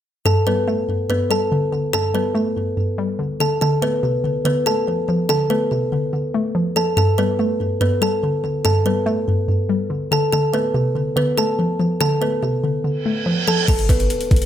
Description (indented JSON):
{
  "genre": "hip hop, trap",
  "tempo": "143 BPM",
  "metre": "4/4",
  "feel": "half-time",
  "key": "unclear",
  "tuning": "A4 = 440 Hz",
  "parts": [
    { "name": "kalimba", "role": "melody", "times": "0.3-14.5 s", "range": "B3 to A5", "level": "-20 LUFS", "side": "equal", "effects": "digital delay" },
    { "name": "hollow square pluck", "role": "accompaniment", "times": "0.3-13.7 s", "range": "G2 to A3", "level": "-20 LUFS", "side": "equal", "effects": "chorus" },
    { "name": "reverse cymbal and impact", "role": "sound effects", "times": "13.0-14.5 s", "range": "none", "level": "-25 LUFS", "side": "right 4 dB", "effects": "none" },
    { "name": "clean 808-style bass", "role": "bass", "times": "13.7-14.5 s", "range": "G1", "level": "-18 LUFS", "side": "equal", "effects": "none" },
    { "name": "trap drum kit", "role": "drums", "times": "13.7-14.5 s", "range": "crash cymbal, hi-hat, kick drum", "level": "-18 LUFS", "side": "equal", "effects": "none" }
  ],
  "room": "light reverb",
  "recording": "none",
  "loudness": "-17 LUFS",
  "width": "side -10 dB against mid",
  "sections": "0.3-13.7 A section",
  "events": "reverse cymbal 13.0-13.7; impact 13.7-14.5",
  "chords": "0.3 Gadd9; 3.6 Dm7; 7.0 Gadd9; 10.3 Dm7; 13.7 Gadd9",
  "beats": "| 0.26 0.68 1.10 1.51 | 1.94 2.35 2.77 3.19 | 3.61 4.03 4.45 4.87 | 5.29 5.71 6.13 6.55 | 6.97 7.39 7.81 8.23 | 8.65 9.07 9.49 9.91 | 10.33 10.75 11.17 11.59 | 12.01 12.42 12.84 13.26 | 13.68 14.10"
}